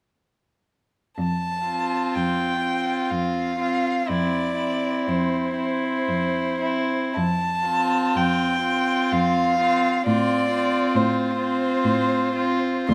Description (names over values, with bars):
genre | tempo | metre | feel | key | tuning
classical, slow romantic movement for string quartet | 52-69 BPM | 3/4 | rubato | F major | A4 = 440 Hz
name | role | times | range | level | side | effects
dark violin | melody | 1.2-12.9 s | C5 to C6 | -27 LUFS | equal | none
warm cello | bass | 1.2-12.9 s | D2 to A2 | -30 LUFS | equal | none
warm violin | second line | 1.7-12.9 s | E4 to F4 | -30 LUFS | equal | none
rich viola | accompaniment | 1.7-12.9 s | C4 | -28 LUFS | equal | none
room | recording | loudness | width
moderate recital hall reverb, RT60 1.4 s | none | -23 LUFS | mono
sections
1.2-12.9 A section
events
none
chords
1.2 F; 10.1 F/A